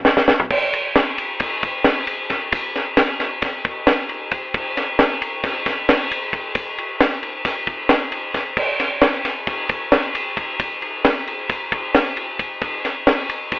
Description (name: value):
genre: rock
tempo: 268 BPM (eighths)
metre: 9/8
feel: straight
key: none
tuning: none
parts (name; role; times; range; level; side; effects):
- compact cocktail drum kit; drums; 0.0-13.6 s; crash cymbal, kick drum, ride cymbal, snare drum, toms; -18 LUFS; equal; none
room: moderate small room reverb, RT60 0.5 s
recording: telephone sound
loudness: -18 LUFS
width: side -20 dB against mid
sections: 0.5-13.6 A section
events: drum fill 0.0-0.5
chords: none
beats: 0.07 0.29 | 0.52 0.74 0.97 1.19 1.42 1.64 1.86 2.09 2.31 | 2.54 2.76 2.98 3.21 3.43 3.66 3.88 4.10 4.33 | 4.55 4.78 5.00 5.22 5.45 5.67 5.89 6.12 6.34 | 6.57 6.79 7.01 7.24 7.46 7.69 7.91 8.13 8.36 | 8.58 8.81 9.03 9.26 9.48 9.71 9.93 10.15 10.38 | 10.60 10.83 11.05 11.28 11.50 11.73 11.95 12.18 12.40 | 12.62 12.85 13.07 13.30 13.52